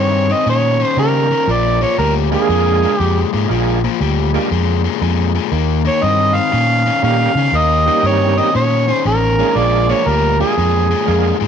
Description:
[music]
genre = electric blues shuffle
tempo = 119 BPM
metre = 4/4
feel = swing 66% on 8ths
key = unclear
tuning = A4 = 440 Hz
[part]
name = overdriven harmonica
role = melody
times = 0.0-11.4 s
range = Ab4 to F5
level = -16 LUFS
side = right 2 dB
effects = none
[part]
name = biting overdriven guitar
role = riff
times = 0.0-11.5 s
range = Bb2 to Db4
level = -19 LUFS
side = left 14 dB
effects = none
[part]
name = fingered electric bass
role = bass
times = 0.0-11.5 s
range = A1 to Db3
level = -17 LUFS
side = right 1 dB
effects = none
[part]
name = bright tonewheel organ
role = accompaniment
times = 1.0-11.4 s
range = G3 to Ab4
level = -22 LUFS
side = right 14 dB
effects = slow rotary speaker, overdrive, chorus vibrato
[sound]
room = light reverb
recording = 1960s-style stereo with parts hard left and right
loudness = -12 LUFS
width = side -8 dB against mid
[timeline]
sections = 0.0-11.5 A section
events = none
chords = 0.0 Eb7; 1.5 Bb7; 5.5 Eb7; 9.6 Bb7

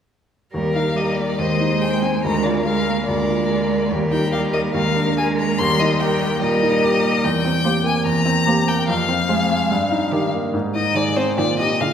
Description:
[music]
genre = quick classical-period movement for piano quartet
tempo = 144 BPM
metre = 4/4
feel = rubato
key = Eb major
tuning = A4 = 440 Hz
[part]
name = rich cello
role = second line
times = 0.5-11.9 s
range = D3 to Bb3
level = -24 LUFS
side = right 4 dB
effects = none
[part]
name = warm violin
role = second line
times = 0.5-11.9 s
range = G4 to C5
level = -25 LUFS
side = left 1 dB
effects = none
[part]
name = clear baby grand piano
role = accompaniment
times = 0.5-11.9 s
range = D2 to Ab4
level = -21 LUFS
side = equal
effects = none
[part]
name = rich violin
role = melody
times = 0.7-11.9 s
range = C5 to C6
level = -22 LUFS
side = left 4 dB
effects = none
[sound]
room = wet concert hall reverb, RT60 1.7 s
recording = recorded in a church or concert hall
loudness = -17 LUFS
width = side -8 dB against mid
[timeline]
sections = 0.5-11.9 A section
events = none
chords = 0.5 Eb; 1.4 Ab/Eb; 2.2 Bb7/D; 3.9 Eb; 4.8 Bb7/Eb; 5.6 Eb; 7.2 C7/E; 8.9 Fm; 9.7 Eb/G; 10.5 Ab; 11.4 Eb/Bb

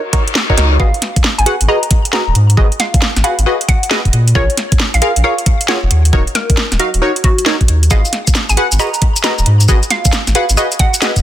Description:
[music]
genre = UK garage, two-step garage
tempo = 135 BPM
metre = 4/4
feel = swing 65% on 16ths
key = G# dorian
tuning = A4 = 440 Hz
[part]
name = reverse cymbal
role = sound effects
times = 0.1-0.8 s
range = none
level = -21 LUFS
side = left 5 dB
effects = none
[part]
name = punchy chord stab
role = stabs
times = 0.1-11.1 s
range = D#4 to F#5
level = -18 LUFS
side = equal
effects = chorus, digital delay
[part]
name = electronic kick drum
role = drums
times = 0.1-11.2 s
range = none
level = -13 LUFS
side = equal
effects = small room ambience
[part]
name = garage drum kit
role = drums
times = 0.1-11.2 s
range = cabasa, hi-hat, snare drum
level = -16 LUFS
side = equal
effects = small room ambience
[part]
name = soft dub sub bass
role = bass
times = 0.6-11.2 s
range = D#1 to A#2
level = -12 LUFS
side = equal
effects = none
[part]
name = hollow square pluck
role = melody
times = 0.8-11.2 s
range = F#4 to A#5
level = -20 LUFS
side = equal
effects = chorus, cassette tape, ping-pong delay
[sound]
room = little or no reverb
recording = dense, heavily limited modern master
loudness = -10 LUFS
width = side -12 dB against mid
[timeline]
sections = 0.0-11.2 A section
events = filter sweep on synth stab 0.0-11.2; reverse cymbal 0.1-0.8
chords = 0.0 D#m7; 0.8 G#m7; 4.1 A#m7; 5.9 D#m7; 7.9 G#m7

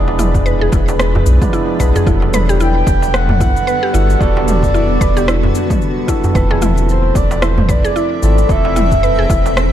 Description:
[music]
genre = organic downtempo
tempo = 112 BPM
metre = 4/4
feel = swing 58% on 16ths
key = unclear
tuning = A4 = 441 Hz
[part]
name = breathy flute-like synth lead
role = melody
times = 0.0-9.7 s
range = C5 to G5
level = -19 LUFS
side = equal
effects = wide subtle chorus, digital delay
[part]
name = overdriven tine electric piano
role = accompaniment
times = 0.0-9.7 s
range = F3 to D5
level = -21 LUFS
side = right 3 dB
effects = phaser, sidechain pumping, digital delay
[part]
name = granular cloud pad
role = sustained chords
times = 0.0-9.7 s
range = D3 to E5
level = -24 LUFS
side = equal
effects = built-in reverb, sidechain pumping
[part]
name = warm sub bass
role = bass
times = 0.0-9.7 s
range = E1 to B1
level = -15 LUFS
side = equal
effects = sidechain pumping
[part]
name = wind-like tuned noise texture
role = texture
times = 0.0-9.7 s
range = B4 to B5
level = -28 LUFS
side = left 2 dB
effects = built-in reverb
[part]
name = darbuka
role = percussion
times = 0.1-9.5 s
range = none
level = -22 LUFS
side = equal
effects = none
[part]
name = mallet-like synth pluck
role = arpeggios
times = 0.2-9.7 s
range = E4 to B4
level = -22 LUFS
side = left 1 dB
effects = chorus, digital delay
[part]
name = deep house drum kit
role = drums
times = 0.2-9.7 s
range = cabasa, rim click, toms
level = -21 LUFS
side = right 1 dB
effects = overdrive, small room ambience
[part]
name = electronic kick drum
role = drums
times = 0.3-9.4 s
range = none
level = -17 LUFS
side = equal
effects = overdrive, small room ambience
[sound]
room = light reverb, digital ambience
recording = dark, warm production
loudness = -11 LUFS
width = side -11 dB against mid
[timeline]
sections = 0.0-9.7 A section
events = none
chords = 0.0 E7; 2.1 Gmaj7/E; 6.4 Fmaj7/E

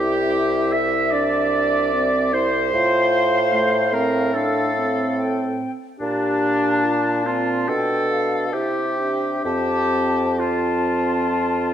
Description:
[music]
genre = classical, slow romantic movement for wind quintet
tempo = 63-77 BPM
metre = 4/4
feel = rubato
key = F major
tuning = A4 = 439 Hz
[part]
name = concert flute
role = melody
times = 0.0-11.7 s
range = E5 to A5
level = -26 LUFS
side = left 7 dB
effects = none
[part]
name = warm oboe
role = second line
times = 0.0-11.7 s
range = D4 to E5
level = -26 LUFS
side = left 3 dB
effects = none
[part]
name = clear clarinet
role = accompaniment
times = 0.0-11.7 s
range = D4 to E5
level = -22 LUFS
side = right 4 dB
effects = none
[part]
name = mellow French horn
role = accompaniment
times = 0.0-11.7 s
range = A3 to G4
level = -26 LUFS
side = equal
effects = none
[part]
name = warm bassoon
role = bass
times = 0.0-11.7 s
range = C2 to C3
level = -24 LUFS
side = right 1 dB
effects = none
[sound]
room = wet recital hall reverb, RT60 1.5 s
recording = dark, warm production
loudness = -18 LUFS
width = side -10 dB against mid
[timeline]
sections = 0.0-11.7 A section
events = none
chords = 0.0 C; 2.7 F/A; 6.0 Bbmaj7; 7.7 G7/B; 8.5 C; 9.5 F

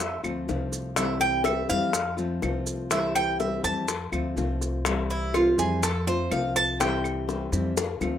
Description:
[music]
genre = latin, Cuban son and guajira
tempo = 123 BPM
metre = 4/4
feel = straight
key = C major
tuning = A4 = 440 Hz
[part]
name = nylon-string guitar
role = accompaniment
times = 0.0-8.2 s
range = C3 to F4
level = -30 LUFS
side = left 3 dB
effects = none
[part]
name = Cuban tres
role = arpeggios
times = 0.0-7.5 s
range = E4 to A5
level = -26 LUFS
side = right 2 dB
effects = none
[part]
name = upright bass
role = bass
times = 0.0-8.2 s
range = C2 to F2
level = -32 LUFS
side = equal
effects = none
[part]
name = bongos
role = percussion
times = 0.0-8.1 s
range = none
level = -32 LUFS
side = left 7 dB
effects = none
[part]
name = maracas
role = percussion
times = 0.0-8.2 s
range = none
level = -34 LUFS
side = right 5 dB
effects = none
[part]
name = claves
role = percussion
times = 0.2-8.2 s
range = none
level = -36 LUFS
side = right 2 dB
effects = none
[sound]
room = moderate studio reverb, RT60 0.6 s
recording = rough home demo mix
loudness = -24 LUFS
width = side -10 dB against mid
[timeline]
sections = 0.0-8.2 A section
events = Cuban tres solo 0.0-8.2; drum fill 7.8-8.2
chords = 0.0 F; 1.0 C; 1.9 F; 2.9 C; 3.9 F; 4.9 C; 5.8 F; 6.8 C

